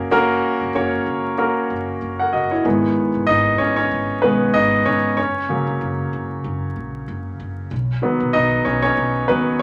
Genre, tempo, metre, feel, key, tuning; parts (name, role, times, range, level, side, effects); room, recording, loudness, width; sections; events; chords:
piano-driven pop; 95 BPM; 4/4; swing 56% on 16ths; A4 = 440 Hz
clear grand piano; accompaniment; 0.0-9.6 s; C#3 to F#5; -20 LUFS; equal
upright bass; bass; 0.0-9.6 s; F#1 to D#2; -30 LUFS; equal
wet club reverb, RT60 0.6 s; vinyl crackle; -19 LUFS; mono
0.0-2.6 A section; 2.6-9.6 B section
grand piano solo 2.6-9.6
0.0 F#; 2.6 G#m; 5.2 F#; 7.7 B